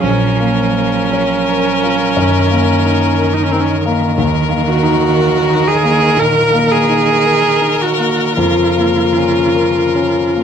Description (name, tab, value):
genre	classical, slow romantic movement for piano quartet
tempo	50-62 BPM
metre	4/4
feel	rubato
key	unclear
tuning	A4 = 440 Hz
part	clear violin	melody	0.0-10.4 s	Bb4	-19 LUFS	left 7 dB	none
part	rich cello	second line	0.0-10.4 s	Db3 to F3	-20 LUFS	right 3 dB	none
part	clear viola	accompaniment	0.0-10.4 s	C4 to Bb4	-14 LUFS	right 3 dB	none
part	warm grand piano	accompaniment	0.0-10.4 s	Bb1 to Db5	-16 LUFS	left 2 dB	none
room	light reverb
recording	minimal, uncompressed stereo recording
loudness	-11 LUFS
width	side -8 dB against mid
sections	0.0-10.4 A section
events	none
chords	0.0 Bbm; 2.2 Ebm7/Gb; 4.2 Ebm; 8.4 Bbm/F